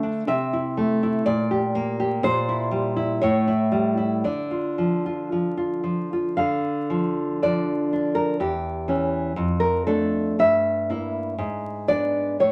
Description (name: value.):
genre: romantic piece for solo classical guitar.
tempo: 55-64 BPM.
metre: 2/4.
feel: rubato.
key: D minor.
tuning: A4 = 440 Hz.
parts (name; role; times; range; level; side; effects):
nylon-string guitar; solo; 0.0-12.5 s; E2 to F5; -23 LUFS; equal; none.
room: moderate club reverb, RT60 0.8 s.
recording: vinyl crackle.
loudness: -23 LUFS.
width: mono.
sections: 0.0-6.4 A section; 6.4-12.5 B section.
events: none.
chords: 0.3 Am/C; 1.3 Gm/Bb; 2.2 Edim/Bb; 3.2 A7; 4.2 Dm; 8.4 C#dim/E; 9.4 Dm/F; 10.4 Edim/G; 11.4 E7/G#.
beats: | 0.28 1.26 | 2.24 3.22 | 4.25 5.33 | 6.39 7.43 | 8.41 9.36 | 10.39 11.38 | 12.39.